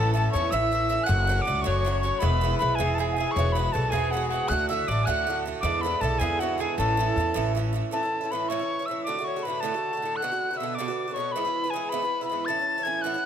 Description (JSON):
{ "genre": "celtic folk, Celtic jig", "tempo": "105 BPM (dotted quarters)", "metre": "6/8", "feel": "straight", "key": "A major", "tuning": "A4 = 442 Hz", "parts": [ { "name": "mellow wooden whistle", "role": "melody", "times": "0.0-13.3 s", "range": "F#5 to A6", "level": "-28 LUFS", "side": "left 1 dB", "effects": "none" }, { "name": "accordion", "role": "second line", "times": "0.0-13.3 s", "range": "F#4 to A5", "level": "-32 LUFS", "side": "left 7 dB", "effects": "none" }, { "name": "mandolin", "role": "second line", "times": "0.0-7.5 s", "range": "F#4 to F#5", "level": "-35 LUFS", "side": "right 6 dB", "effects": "none" }, { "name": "Irish bouzouki", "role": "accompaniment", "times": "0.0-13.3 s", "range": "G#2 to F#4", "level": "-30 LUFS", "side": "right 7 dB", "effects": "none" }, { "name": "upright bass", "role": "bass", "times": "0.0-7.8 s", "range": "E1 to E2", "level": "-27 LUFS", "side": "left 1 dB", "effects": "none" } ], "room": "light reverb", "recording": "close, detailed microphones", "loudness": "-23 LUFS", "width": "side -9 dB against mid", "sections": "0.0-7.9 A section; 7.9-13.3 B section", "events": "none", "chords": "0.0 A; 1.1 F#m; 2.2 E; 3.4 Eadd9; 4.5 D; 5.6 E7; 6.8 A; 9.1 D; 10.2 Bm; 11.3 E; 12.5 A" }